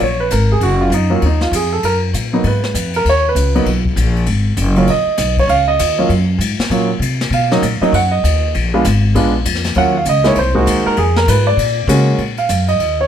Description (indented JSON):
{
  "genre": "jazz piano trio",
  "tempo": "197 BPM",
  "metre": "4/4",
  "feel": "swing 63% on 8ths",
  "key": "Eb minor",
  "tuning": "A4 = 438 Hz",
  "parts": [
    { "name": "warm grand piano", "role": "melody", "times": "0.0-13.1 s", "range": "Gb3 to F#5", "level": "-15 LUFS", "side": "right 2 dB", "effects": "none" },
    { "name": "upright bass", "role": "bass", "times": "0.0-13.1 s", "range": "Gb1 to C#3", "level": "-16 LUFS", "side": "left 1 dB", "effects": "none" },
    { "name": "jazz brush drum kit", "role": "drums", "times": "0.0-12.9 s", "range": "hi-hat, kick drum, ride cymbal, snare drum", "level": "-22 LUFS", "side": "left 5 dB", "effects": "none" }
  ],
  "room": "light reverb",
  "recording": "none",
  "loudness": "-12 LUFS",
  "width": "side -9 dB against mid",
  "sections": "0.0-12.2 A section",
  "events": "grand piano solo 0.0-13.1",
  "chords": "0.0 Ebm7; 7.3 Bmaj7; 8.5 Bb7b9; 9.8 Ebm7; 10.4 Ab9/C; 11.0 Fdim; 11.6 Bb7alt; 12.2 Ebm",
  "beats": "| 0.01 0.32 0.62 0.93 | 1.23 1.53 1.84 2.14 | 2.45 2.75 3.06 3.36 | 3.67 3.97 4.28 4.58 | 4.88 5.19 5.49 5.80 | 6.10 6.41 6.71 7.01 | 7.32 7.62 7.93 8.23 | 8.54 8.84 9.14 9.45 | 9.75 10.06 10.36 10.66 | 10.97 11.27 11.58 11.88 | 12.19 12.49 12.79"
}